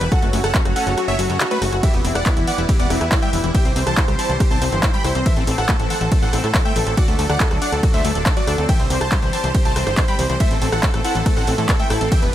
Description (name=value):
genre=uplifting trance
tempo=140 BPM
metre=4/4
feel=straight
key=unclear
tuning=A4 = 439 Hz
part: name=supersaw chords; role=melody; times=0.0-12.3 s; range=E4 to B5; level=-24 LUFS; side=right 1 dB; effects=sidechain pumping, ping-pong delay
part: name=clear grand piano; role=second line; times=0.0-12.3 s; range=E4 to B5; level=-29 LUFS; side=right 1 dB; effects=sidechain pumping, tape echo
part: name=filtered supersaw swell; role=sustained chords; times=0.0-12.3 s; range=E3 to D5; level=-28 LUFS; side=right 1 dB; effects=sidechain pumping
part: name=liquid acid bass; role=arpeggios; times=0.0-12.3 s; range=C#3 to G4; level=-27 LUFS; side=left 5 dB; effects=analog chorus, sidechain pumping, tape echo
part: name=tight sequencer bass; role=bass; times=0.0-12.3 s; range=D1 to A2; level=-22 LUFS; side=equal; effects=sidechain pumping
part: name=punchy analog drum machine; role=drums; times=0.0-12.3 s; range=handclaps, hi-hat, ride cymbal, rim click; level=-25 LUFS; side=equal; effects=none
part: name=electronic kick drum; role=drums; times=0.1-12.2 s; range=none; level=-18 LUFS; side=equal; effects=none
room=digital ambience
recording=none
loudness=-16 LUFS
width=side -12 dB against mid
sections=0.0-12.3 A section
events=kick drops out 1.0-1.8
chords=0.1 F#m; 1.8 Em; 3.5 C; 5.3 Am; 7.0 D; 8.7 C; 10.4 Am